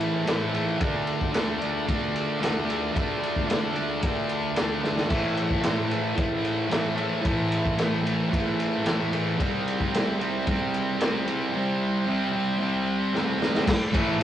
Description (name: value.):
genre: garage rock duo or trio.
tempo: 112 BPM.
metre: 4/4.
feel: straight.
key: A minor.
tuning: A4 = 442 Hz.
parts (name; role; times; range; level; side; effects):
combo organ; sustained chords; 0.0-14.2 s; E4 to C6; -37 LUFS; right 1 dB; none.
thick fuzz guitar; riff; 0.0-14.2 s; A2 to D4; -25 LUFS; equal; distortion.
crunchy breakbeat drum kit; drums; 0.0-14.2 s; crash cymbal, kick drum, ride cymbal, snare drum; -28 LUFS; equal; none.
room: wet small room reverb, RT60 0.5 s.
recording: rough rehearsal-room recording, warm saturation, cassette tape, nothing above 10.3 kHz.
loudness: -23 LUFS.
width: side -11 dB against mid.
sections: 0.0-13.7 A section.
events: drum fill 4.8, 13.1-13.7; transistor combo organ fill 12.9-13.7.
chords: 0.0 Am; 0.8 Dm; 5.1 Am; 9.4 C; 13.7 Am.